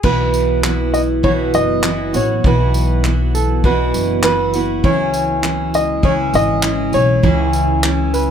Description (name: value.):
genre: acoustic pop.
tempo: 100 BPM.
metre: 4/4.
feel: straight.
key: unclear.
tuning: A4 = 436 Hz.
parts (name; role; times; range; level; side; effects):
warm upright piano; melody; 0.0-8.3 s; A4 to D#5; -19 LUFS; equal; none.
picked steel-string acoustic guitar; accompaniment; 0.0-8.3 s; B2 to G#4; -18 LUFS; right 2 dB; none.
ethereal airy pad; sustained chords; 1.1-8.3 s; C#3 to F#4; -25 LUFS; right 1 dB; ensemble chorus, built-in reverb.
upright bass; bass; 0.0-8.3 s; F#1 to C#2; -19 LUFS; equal; none.
unplugged drum kit; drums; 0.0-8.3 s; crash cymbal, handclaps, kick drum, tambourine; -20 LUFS; equal; none.
room: moderate small room reverb, RT60 0.5 s.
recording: none.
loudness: -13 LUFS.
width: side -8 dB against mid.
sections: 0.0-8.3 A section.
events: none.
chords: 0.0 Bsus4; 4.8 C#m.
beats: | 0.04 0.64 1.24 1.84 | 2.44 3.04 3.64 4.24 | 4.84 5.44 6.04 6.64 | 7.24 7.84.